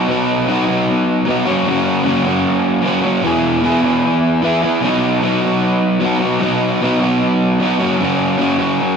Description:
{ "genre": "rock", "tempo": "152 BPM", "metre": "4/4", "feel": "straight", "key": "unclear", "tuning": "A4 = 442 Hz", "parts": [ { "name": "crunchy overdriven guitar", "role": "solo", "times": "0.0-9.0 s", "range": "E2 to G#4", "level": "-13 LUFS", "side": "equal", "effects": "spring reverb" } ], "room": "light reverb", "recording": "band playing live in one room", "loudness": "-13 LUFS", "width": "side -6 dB against mid", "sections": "0.0-9.0 A section", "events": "none", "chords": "0.0 B; 1.5 F#; 3.3 E; 4.8 B; 7.8 F#" }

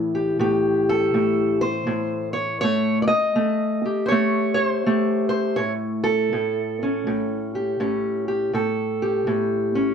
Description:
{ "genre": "acoustic country blues, solo or duo", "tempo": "81 BPM", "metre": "4/4", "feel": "swing 64% on 8ths", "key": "A mixolydian", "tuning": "A4 = 440 Hz", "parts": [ { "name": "fingerpicked steel-string acoustic guitar", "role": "solo", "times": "0.0-9.9 s", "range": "A2 to D#5", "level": "-20 LUFS", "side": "equal", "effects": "none" } ], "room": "wet studio reverb, RT60 0.8 s", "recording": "dark, warm production", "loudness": "-20 LUFS", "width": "side -7 dB against mid", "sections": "0.0-9.9 A section", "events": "none", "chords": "0.0 A7" }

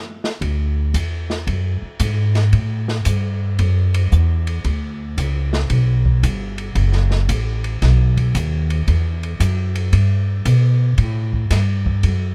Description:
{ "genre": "jazz, small-group swing and bop", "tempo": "114 BPM", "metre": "4/4", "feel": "swing 67% on 8ths", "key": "D major", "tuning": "A4 = 440 Hz", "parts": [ { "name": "open jazz drum kit", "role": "drums", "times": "0.2-12.2 s", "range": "hi-hat, kick drum, ride cymbal, snare drum", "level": "-30 LUFS", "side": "equal", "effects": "none" }, { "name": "upright bass", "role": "bass", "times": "0.4-12.3 s", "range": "F#1 to B2", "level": "-19 LUFS", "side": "equal", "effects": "none" } ], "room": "little or no reverb", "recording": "close, detailed microphones", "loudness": "-18 LUFS", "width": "mono", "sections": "0.4-12.3 A section", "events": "none", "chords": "none" }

